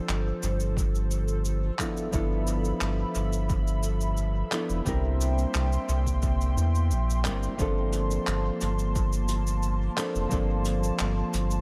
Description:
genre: sunset chillout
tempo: 88 BPM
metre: 4/4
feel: straight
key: G dorian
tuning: A4 = 440 Hz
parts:
  - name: nylon-string guitar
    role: accompaniment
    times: 0.0-11.6 s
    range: F3 to Bb4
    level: -34 LUFS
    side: equal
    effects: low-pass filter, dub echo, shimmer reverb
  - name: airy breathy pad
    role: sustained chords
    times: 0.0-11.6 s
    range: Bb3 to C6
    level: -38 LUFS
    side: equal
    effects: chorus, shimmer reverb
  - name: round analog bass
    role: bass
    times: 0.1-11.6 s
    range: F1 to E2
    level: -29 LUFS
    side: equal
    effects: none
  - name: jazz brush drum kit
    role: drums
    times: 0.1-11.6 s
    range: cabasa, handclaps, hi-hat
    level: -38 LUFS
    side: equal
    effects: dub echo
  - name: electronic kick drum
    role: drums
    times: 0.8-10.5 s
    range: none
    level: -33 LUFS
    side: equal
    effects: none
room: small room ambience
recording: echo-heavy mix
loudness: -27 LUFS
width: mono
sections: 0.0-11.6 A section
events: none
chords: 0.0 Gm11; 1.8 G13; 4.9 C7; 7.6 Gm11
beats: 0.09 0.77 1.45 | 2.13 2.81 3.50 4.18 | 4.86 5.54 6.22 6.91 | 7.59 8.27 8.95 9.63 | 10.31 11.00

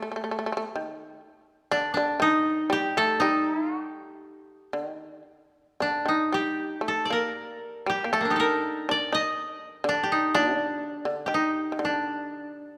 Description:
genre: japanese traditional, Japanese chamber music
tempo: 60 BPM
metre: 2/4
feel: uneven beats, rubato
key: D miyako bushi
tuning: A4 = 440 Hz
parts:
  - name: koto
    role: melody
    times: 0.0-12.8 s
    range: Bb3 to Eb5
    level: -27 LUFS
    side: equal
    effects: none
  - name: shamisen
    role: second line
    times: 0.0-12.8 s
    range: D3 to Eb4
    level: -33 LUFS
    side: equal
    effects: none
room: moderate scoring stage reverb, RT60 1.9 s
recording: none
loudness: -26 LUFS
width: mono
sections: 0.0-12.8 A section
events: none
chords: none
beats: 0.75 | 1.72 2.72 | 3.72 4.74 | 5.79 6.83 | 7.86 8.87 | 9.84 10.81 | 11.80

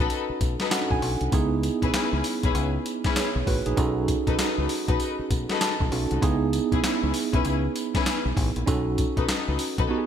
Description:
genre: R&B, new jack swing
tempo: 98 BPM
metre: 4/4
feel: swing 63% on 16ths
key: unclear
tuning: A4 = 439 Hz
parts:
  - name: tine electric piano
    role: accompaniment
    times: 0.0-10.1 s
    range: B3 to A5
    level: -27 LUFS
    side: right 6 dB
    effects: medium tremolo
  - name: dark studio string section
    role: stabs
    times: 0.0-9.9 s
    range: C#4 to B4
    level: -30 LUFS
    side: left 7 dB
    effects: ping-pong delay
  - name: deep dub fingered electric bass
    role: bass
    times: 0.0-9.9 s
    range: A1 to C#2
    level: -28 LUFS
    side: left 1 dB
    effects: none
  - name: boom bap sampler-style drum kit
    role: drums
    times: 0.1-9.9 s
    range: handclaps, hi-hat, kick drum, snare drum, tambourine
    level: -27 LUFS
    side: left 1 dB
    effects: gated reverb
room: light reverb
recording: bright 1980s-style digital production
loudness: -22 LUFS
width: side -8 dB against mid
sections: 0.0-10.1 A section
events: tine electric piano fill 0.4-1.3, 5.3-6.2; silent gap 9.9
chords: 0.0 B7; 1.3 C#m7; 3.8 B7; 6.2 C#m7; 8.7 B7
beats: 0.10 0.71 | 1.33 1.94 2.55 3.16 | 3.77 4.39 5.00 5.61 | 6.22 6.84 7.45 8.06 | 8.67 9.29 9.90

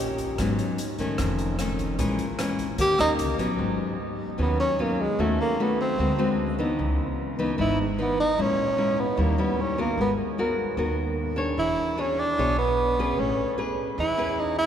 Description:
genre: bossa nova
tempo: 150 BPM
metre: 4/4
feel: straight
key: G# minor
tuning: A4 = 436 Hz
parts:
  - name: nylon-string guitar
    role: accompaniment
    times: 0.0-14.7 s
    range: F2 to C#5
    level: -26 LUFS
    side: left 2 dB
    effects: none
  - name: upright bass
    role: bass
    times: 0.0-14.7 s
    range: E1 to E2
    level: -31 LUFS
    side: right 1 dB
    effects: none
  - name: open jazz drum kit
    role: drums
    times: 0.2-3.5 s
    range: hi-hat, kick drum, rim click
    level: -34 LUFS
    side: equal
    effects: none
  - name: breathy tenor saxophone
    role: melody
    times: 2.8-14.7 s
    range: G#3 to G4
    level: -26 LUFS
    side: right 2 dB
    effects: none
room: wet cathedral reverb, RT60 6.9 s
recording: recorded in a church or concert hall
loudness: -23 LUFS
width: side -9 dB against mid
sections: 0.0-3.6 A section; 3.6-14.7 A section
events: tenor saxophone solo 0.0-3.6, 3.6-14.7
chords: 0.4 G#m7; 1.2 Faug7; 2.0 A#m7b5; 2.8 D#7; 3.6 G#m7; 5.2 D#m7b5; 6.0 D7#11; 6.8 C#m9; 8.4 A#m7b5; 9.2 D#7b9; 10.0 G#m9; 11.6 E6; 13.2 Amaj9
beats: | 0.39 0.79 1.19 1.59 | 1.99 2.39 2.79 3.19 | 3.59 3.99 4.39 4.79 | 5.18 5.58 5.98 6.38 | 6.78 7.18 7.58 7.98 | 8.38 8.78 9.18 9.58 | 9.98 10.38 10.78 11.18 | 11.58 11.98 12.38 12.78 | 13.18 13.58 13.97 14.37

